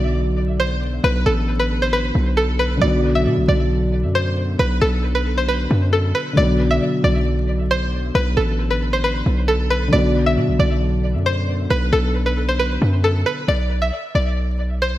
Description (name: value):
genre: hip hop, trap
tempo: 135 BPM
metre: 4/4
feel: half-time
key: B phrygian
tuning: A4 = 440 Hz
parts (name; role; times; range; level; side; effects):
- string-like resonator pluck; melody; 0.0-15.0 s; A4 to E5; -21 LUFS; equal; chorus, low-pass filter, diffuse ambient delay
- felt-muted upright piano; accompaniment; 0.0-13.5 s; B2 to D5; -22 LUFS; left 1 dB; low-pass filter
- hard-hitting 808-style bass; bass; 0.0-15.0 s; A1 to B2; -19 LUFS; equal; none
room: moderate lush hall reverb, RT60 1.6 s, small room ambience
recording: dreamy mix soaked in reverb, vinyl crackle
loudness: -16 LUFS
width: side -14 dB against mid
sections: 0.0-13.5 A section; 13.5-15.0 B section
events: none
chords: 0.0 Bm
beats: 0.15 0.59 | 1.04 1.48 1.93 2.37 | 2.82 3.26 3.71 4.15 | 4.59 5.04 5.48 5.93 | 6.37 6.82 7.26 7.71 | 8.15 8.59 9.04 9.48 | 9.93 10.37 10.82 11.26 | 11.71 12.15 12.59 13.04 | 13.48 13.93 14.37 14.82